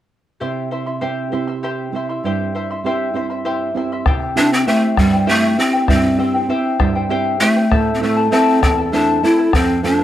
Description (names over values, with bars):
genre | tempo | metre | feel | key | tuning
andean folk, Andean ensemble | 66 BPM (dotted quarters) | 6/8 | straight | unclear | A4 = 440 Hz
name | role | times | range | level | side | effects
charango | accompaniment | 0.4-10.0 s | E4 to C6 | -20 LUFS | left 3 dB | none
nylon-string guitar | accompaniment | 0.4-10.0 s | E2 to G4 | -22 LUFS | right 6 dB | none
bombo | percussion | 4.1-9.8 s | none | -18 LUFS | left 1 dB | none
breathy bright large pan pipes | melody | 4.4-10.0 s | G3 to E4 | -15 LUFS | equal | none
room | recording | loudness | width
small room ambience | dry, close 1970s-style studio recording | -14 LUFS | side -12 dB against mid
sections
0.4-4.1 A section; 4.1-10.0 B section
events
none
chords
0.4 C; 7.7 Am; 9.5 F